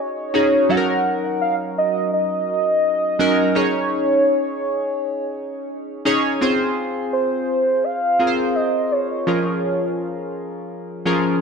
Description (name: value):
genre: pop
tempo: 84 BPM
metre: 4/4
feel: swing 55% on 16ths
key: Db major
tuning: A4 = 440 Hz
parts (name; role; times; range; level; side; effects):
- warm velvety synth lead; melody; 0.0-10.3 s; C5 to Gb5; -20 LUFS; equal; chorus, digital delay
- chorused retro synth keys; accompaniment; 0.0-11.4 s; F3 to Db5; -21 LUFS; equal; none
room: moderate scoring stage reverb, RT60 1.6 s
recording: none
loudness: -17 LUFS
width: side -5 dB against mid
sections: 0.0-6.4 A section; 6.4-11.4 B section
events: none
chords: 0.0 Ab7sus4; 0.7 Ebm7/Gb; 3.6 Dbsus2; 6.4 Fm; 9.3 Db6/F